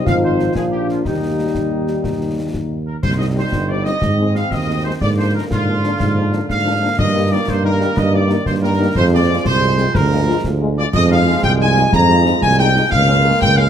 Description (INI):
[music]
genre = military-style march for wind band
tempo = 121 BPM (dotted quarters)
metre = 6/8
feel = straight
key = Eb major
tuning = A4 = 438 Hz
[part]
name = warm trumpet section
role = melody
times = 0.0-13.7 s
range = Eb4 to Bb5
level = -19 LUFS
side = equal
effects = none
[part]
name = warm euphonium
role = second line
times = 0.0-2.7 s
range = F4 to G4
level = -22 LUFS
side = right 2 dB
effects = none
[part]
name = dark French horn section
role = accompaniment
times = 0.0-13.6 s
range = F3 to Ab4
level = -24 LUFS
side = left 6 dB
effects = none
[part]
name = mellow trombone section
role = sustained chords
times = 0.0-13.7 s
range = D3 to Eb4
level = -25 LUFS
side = right 3 dB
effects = none
[part]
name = warm tuba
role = bass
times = 0.1-13.7 s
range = G1 to Ab2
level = -17 LUFS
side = right 2 dB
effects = none
[part]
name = concert snare drum, concert bass drum and clash cymbals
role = drums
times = 0.1-13.6 s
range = none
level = -23 LUFS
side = left 1 dB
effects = none
[sound]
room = moderate large studio reverb, RT60 1.4 s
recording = none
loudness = -14 LUFS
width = side -9 dB against mid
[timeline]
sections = 0.0-3.0 A section; 3.0-13.7 B section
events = none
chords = 0.1 Fm7/Ab; 0.6 Bb; 1.0 Eb; 3.0 Cm; 4.0 Ab; 5.0 Bb7/Ab; 7.0 Eb/G; 9.0 Fm; 9.9 Bb7/D; 10.9 Fm7; 12.9 Bbm7/Db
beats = | 0.06 0.55 | 1.05 1.54 | 2.04 2.53 | 3.03 3.52 | 4.02 4.51 | 5.00 5.50 | 5.99 6.49 | 6.98 7.48 | 7.97 8.47 | 8.96 9.46 | 9.95 10.45 | 10.94 11.43 | 11.93 12.42 | 12.92 13.41